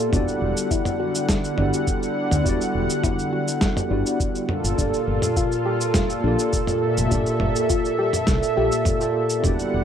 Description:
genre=sunset chillout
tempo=103 BPM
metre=4/4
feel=straight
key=unclear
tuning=A4 = 439 Hz
part: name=tine electric piano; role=accompaniment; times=0.0-9.8 s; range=Bb3 to E5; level=-27 LUFS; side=left 1 dB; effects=medium tremolo, auto-pan, ping-pong delay, plate reverb
part: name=lush unison pad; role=sustained chords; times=0.0-9.8 s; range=Bb2 to F#5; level=-24 LUFS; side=right 1 dB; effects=chorus, vintage 12-bit sampler grit
part: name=soft round pluck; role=arpeggios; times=0.1-9.6 s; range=D4 to G4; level=-30 LUFS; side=left 5 dB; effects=chorus, ping-pong delay, plate reverb
part: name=mellow fretless electric bass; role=bass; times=0.1-9.8 s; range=E1 to D2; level=-24 LUFS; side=equal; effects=lush chorus
part: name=dusty soul sampler-style drum kit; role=drums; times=0.1-9.7 s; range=shaker, snare drum, toms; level=-26 LUFS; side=equal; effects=none
part: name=electronic kick drum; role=drums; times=0.1-9.6 s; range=none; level=-25 LUFS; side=equal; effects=none
room=light reverb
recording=rough home demo mix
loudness=-19 LUFS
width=side -8 dB against mid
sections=0.0-9.8 A section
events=none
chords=0.1 Em9; 4.5 Gm9

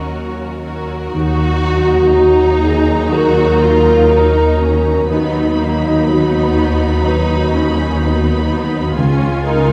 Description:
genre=cinematic, emotional film score for orchestra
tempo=61 BPM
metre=4/4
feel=rubato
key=Eb minor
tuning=A4 = 440 Hz
part: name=warm studio violin section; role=melody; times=0.0-9.7 s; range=Eb5 to B5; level=-29 LUFS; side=equal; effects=none
part: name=warm studio violin section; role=second line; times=0.0-9.7 s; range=Bb3 to Bb4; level=-24 LUFS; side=equal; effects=none
part: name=felt-muted upright piano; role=accompaniment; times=0.0-9.7 s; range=Db2 to B4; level=-23 LUFS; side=equal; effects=none
part: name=warm studio viola section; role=accompaniment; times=0.0-9.7 s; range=Gb3 to F4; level=-24 LUFS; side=equal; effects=none
part: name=warm studio cello section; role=bass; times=0.1-9.7 s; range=Db2 to Eb2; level=-21 LUFS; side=equal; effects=none
part: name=warm studio double bass section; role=bass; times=1.1-9.7 s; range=Db2 to Eb2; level=-22 LUFS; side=equal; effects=none
part: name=mellow French horn section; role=sustained chords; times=1.6-9.7 s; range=D#4 to Bb4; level=-17 LUFS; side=equal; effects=none
room=wet recital hall reverb, RT60 1.4 s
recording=recorded in a church or concert hall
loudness=-14 LUFS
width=mono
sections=0.0-1.1 A section; 1.1-9.7 A section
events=none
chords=0.0 Ebm7; 1.1 Ebm; 5.1 B/D#; 9.0 Db

